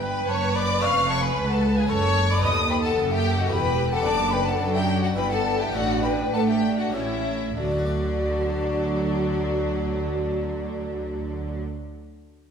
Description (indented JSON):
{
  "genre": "classical, baroque-style concerto movement with solo episodes",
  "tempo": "93-112 BPM",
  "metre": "3/4",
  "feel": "straight",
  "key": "D major",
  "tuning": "A4 = 443 Hz",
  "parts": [
    { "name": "mellow hollow concert flute", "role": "melody", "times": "0.0-11.6 s", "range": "F#4 to C#6", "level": "-29 LUFS", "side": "left 2 dB", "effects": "none" },
    { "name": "warm chamber violin section", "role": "melody", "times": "0.0-11.6 s", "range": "D5 to E#6", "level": "-30 LUFS", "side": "left 3 dB", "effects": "none" },
    { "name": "rich chamber violin section", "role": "second line", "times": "0.0-11.6 s", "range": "D4 to E#5", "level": "-29 LUFS", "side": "left 3 dB", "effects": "none" },
    { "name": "dark studio viola section", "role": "accompaniment", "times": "0.0-11.6 s", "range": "F#3 to B4", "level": "-31 LUFS", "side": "right 3 dB", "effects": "none" },
    { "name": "harpsichord", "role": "accompaniment", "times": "0.0-11.9 s", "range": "C#2 to D5", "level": "-36 LUFS", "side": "equal", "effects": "none" },
    { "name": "rich chamber cello section", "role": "bass", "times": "0.0-11.6 s", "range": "C#2 to A3", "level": "-28 LUFS", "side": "right 2 dB", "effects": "none" },
    { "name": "warm chamber double bass section", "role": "bass", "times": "0.0-11.6 s", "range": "E1 to A2", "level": "-29 LUFS", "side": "right 2 dB", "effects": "none" }
  ],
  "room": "wet recital hall reverb, RT60 1.6 s",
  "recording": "recorded in a church or concert hall",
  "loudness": "-21 LUFS",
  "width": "side -7 dB against mid",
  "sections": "0.0-7.6 A section; 7.6-11.4 B section",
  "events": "slowing down 3.2-7.6",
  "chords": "0.0 Em (rootless); 0.8 C#7/E#; 1.9 F#m; 2.4 B7/D#; 3.5 Em; 4.1 D/F#; 5.2 Em7/G; 5.7 D/A; 6.9 A7; 7.6 D"
}